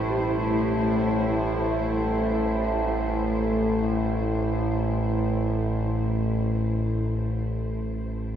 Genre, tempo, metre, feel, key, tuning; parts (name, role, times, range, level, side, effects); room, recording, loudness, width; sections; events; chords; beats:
dark ambient drone; free time; A minor; A4 = 439 Hz
warm studio cello section; sustained chords; 0.0-8.4 s; A3 to C5; -31 LUFS; equal
bronze singing bowl; arpeggios; 0.0-6.4 s; A2 to G4; -37 LUFS; left 1 dB
analog drone; drone; 0.0-8.4 s; A1 to A2; -24 LUFS; equal; chorus
wet echo chamber reverb, RT60 2.2 s; echo-heavy mix; -23 LUFS; side -9 dB against mid
0.0-8.4 A section
fade-out on cello section 0.0-8.4
0.0 A5
free time